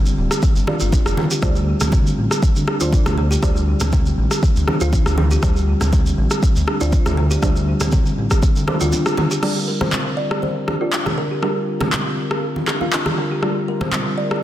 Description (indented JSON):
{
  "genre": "afro house",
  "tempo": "120 BPM",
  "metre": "4/4",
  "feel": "swing 54% on 16ths",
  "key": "G minor",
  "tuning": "A4 = 440 Hz",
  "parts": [
    { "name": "kalimba", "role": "arpeggios", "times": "0.0-14.0 s", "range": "D3 to G4", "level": "-24 LUFS", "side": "left 1 dB", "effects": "sidechain pumping, low-pass filter, tape echo" },
    { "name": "smooth synth bass", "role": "bass", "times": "0.0-8.9 s", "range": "D1 to D2", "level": "-20 LUFS", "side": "equal", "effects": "tube saturation, sidechain pumping" },
    { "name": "shekere", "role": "percussion", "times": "0.1-9.4 s", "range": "none", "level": "-30 LUFS", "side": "right 2 dB", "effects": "none" },
    { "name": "deep house drum kit", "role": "drums", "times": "0.3-14.4 s", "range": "crash cymbal, handclaps, rim click", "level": "-24 LUFS", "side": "equal", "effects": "overdrive" },
    { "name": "electronic kick drum", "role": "drums", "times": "0.4-8.5 s", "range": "none", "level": "-18 LUFS", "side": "equal", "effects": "overdrive" },
    { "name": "deep mellow chord stab", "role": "stabs", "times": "0.7-13.5 s", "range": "D4 to F5", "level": "-30 LUFS", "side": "right 3 dB", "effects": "chorus, phaser, sidechain pumping, tape echo" },
    { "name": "congas", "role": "percussion", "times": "0.7-14.0 s", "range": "none", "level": "-26 LUFS", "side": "right 1 dB", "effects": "none" },
    { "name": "warm analog pad", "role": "sustained chords", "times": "9.4-14.4 s", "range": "G3 to Bb4", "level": "-30 LUFS", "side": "right 1 dB", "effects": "none" },
    { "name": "kalimba", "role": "melody", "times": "9.7-14.4 s", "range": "Bb4 to D5", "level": "-28 LUFS", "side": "left 1 dB", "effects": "tape echo" }
  ],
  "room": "light reverb, small room reverb",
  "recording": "dense, heavily limited modern master",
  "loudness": "-16 LUFS",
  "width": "side -13 dB against mid",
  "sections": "0.0-9.4 A section; 9.4-14.4 B section",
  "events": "band accent 9.1; filter sweep on kalimba 9.4-14.4",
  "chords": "0.0 Gm7; 1.4 Dm7; 9.4 Gm7"
}